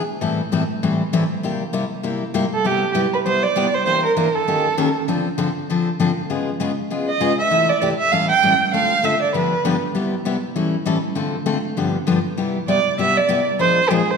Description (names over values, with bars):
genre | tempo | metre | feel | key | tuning
jazz | 197 BPM | 4/4 | swing 58% on 8ths | C major | A4 = 438 Hz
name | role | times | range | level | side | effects
picked steel-string acoustic guitar | accompaniment | 0.2-14.0 s | G2 to Bb4 | -20 LUFS | left 3 dB | none
warm violin | melody | 2.5-5.0, 7.1-9.8, 12.7-14.2 s | G4 to G5 | -18 LUFS | right 4 dB | none
room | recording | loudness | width
wet recital hall reverb, RT60 1.7 s | none | -17 LUFS | side -5 dB against mid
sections
0.0-2.6 A section; 2.6-12.4 B section; 12.4-14.2 C section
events
none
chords
0.2 Am7; 1.4 C7; 2.6 Cmaj7; 3.9 Em7b5; 4.5 Eb7#11; 5.1 Dm7; 6.3 Db9; 7.5 C6; 8.1 A7; 8.7 Dm7; 9.3 G7; 9.9 Cmaj7; 10.6 A7; 11.2 Dm7; 11.8 G7; 12.4 Cmaj7; 13.6 Bb9